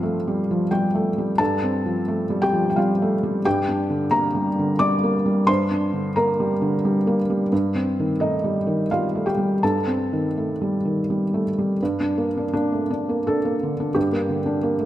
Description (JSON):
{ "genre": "neoclassical minimalist piano", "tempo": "79-90 BPM", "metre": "3/4", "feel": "rubato", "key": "G minor", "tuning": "A4 = 441 Hz", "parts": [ { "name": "felt-muted upright piano", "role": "solo", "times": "0.0-14.9 s", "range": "G2 to D6", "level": "-19 LUFS", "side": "equal", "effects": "none" } ], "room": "moderate scoring stage reverb, RT60 1.8 s", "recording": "none", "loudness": "-19 LUFS", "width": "side -13 dB against mid", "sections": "0.0-11.8 A section; 11.8-14.9 A section", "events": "none", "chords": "0.0 F/G; 3.5 Gm; 7.5 Adim/G; 11.8 Gm", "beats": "0.01 0.71 | 1.40 2.09 2.77 | 3.45 4.13 4.81 | 5.48 6.16 6.83 | 7.51 8.20 8.90 | 9.62 10.35 11.08 | 11.80 12.51 13.25 | 13.96 14.64" }